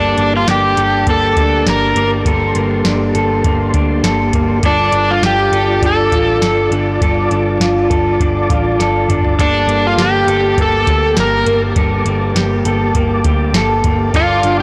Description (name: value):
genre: dream pop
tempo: 101 BPM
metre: 4/4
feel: straight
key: G minor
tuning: A4 = 440 Hz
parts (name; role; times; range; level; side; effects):
- overdriven slide guitar; melody; 0.0-14.6 s; D4 to Bb4; -18 LUFS; equal; digital delay
- mellow tonewheel organ; sustained chords; 0.0-14.6 s; Bb3 to D6; -23 LUFS; equal; chorus vibrato, slow rotary speaker
- electric guitar through a small old amp; arpeggios; 0.0-14.6 s; G2 to A4; -20 LUFS; equal; lush chorus, digital delay
- vintage muted picked electric bass; bass; 0.0-14.6 s; G1 to D2; -21 LUFS; equal; tube saturation
- soft vintage rhythm box; drums; 0.2-14.6 s; hi-hat, kick drum, snare drum, toms; -20 LUFS; equal; none
room: light reverb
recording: blown-out, overdriven recording, overdrive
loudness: -14 LUFS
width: mono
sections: 0.0-14.6 A section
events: drum fill 8.8-9.4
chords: 0.0 Gmadd9; 4.6 Dm/G; 9.4 Gmadd9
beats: 0.48 1.07 1.67 | 2.26 2.85 3.45 4.04 | 4.64 5.23 5.82 6.42 | 7.01 7.61 8.20 8.79 | 9.39 9.98 10.58 11.17 | 11.76 12.36 12.95 13.55 | 14.14